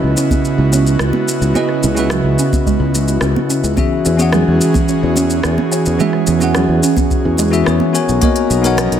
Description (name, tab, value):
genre	sunset chillout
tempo	108 BPM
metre	4/4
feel	straight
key	unclear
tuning	A4 = 440 Hz
part	bell-like tine electric piano	accompaniment	0.0-9.0 s	C#3 to G#5	-16 LUFS	moving between left 7 dB and right 7 dB	auto-pan, digital delay
part	airy breathy pad	sustained chords	0.0-9.0 s	C#3 to A#4	-20 LUFS	equal	chorus
part	soft round pluck	arpeggios	0.0-8.9 s	G#3 to C#4	-22 LUFS	right 4 dB	ensemble chorus, digital delay
part	sustaining fretless electric bass	bass	0.0-9.0 s	B1 to E2	-16 LUFS	equal	none
part	deep house drum kit	drums	0.2-9.0 s	hi-hat, rim click, shaker	-23 LUFS	equal	studio reverb
part	electronic kick drum	drums	0.3-8.3 s	none	-17 LUFS	equal	studio reverb
part	congas	percussion	0.3-8.9 s	none	-24 LUFS	right 3 dB	none
room	moderate lush hall reverb, RT60 2.0 s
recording	none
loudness	-12 LUFS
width	side -9 dB against mid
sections	0.0-9.0 A section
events	none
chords	0.0 C#m11; 3.8 E69; 7.9 Bmaj9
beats	0.45 1.00 | 1.56 2.11 2.67 3.22 | 3.78 4.33 4.89 5.45 | 6.00 6.56 7.11 7.67 | 8.22 8.78